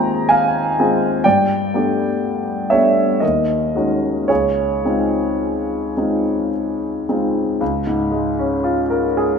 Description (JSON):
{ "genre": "classical, impressionist solo piano", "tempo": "53-64 BPM", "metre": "3/4", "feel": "rubato", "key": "Db lydian", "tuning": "A4 = 441 Hz", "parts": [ { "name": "warm grand piano", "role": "solo", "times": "0.0-9.4 s", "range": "Db2 to C6", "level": "-16 LUFS", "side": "equal", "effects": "none" } ], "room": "moderate scoring stage reverb, RT60 1.6 s", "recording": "none", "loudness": "-16 LUFS", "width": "side -6 dB against mid", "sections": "0.0-7.6 A section; 7.6-9.4 B section", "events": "none", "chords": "0.0 Fm7/Eb; 1.2 Gadd9; 3.2 Ebm7; 4.3 Dbmaj9; 7.6 Db6", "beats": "0.29 | 1.25 2.21 3.22 | 4.29 5.40 6.52 | 7.61 8.64" }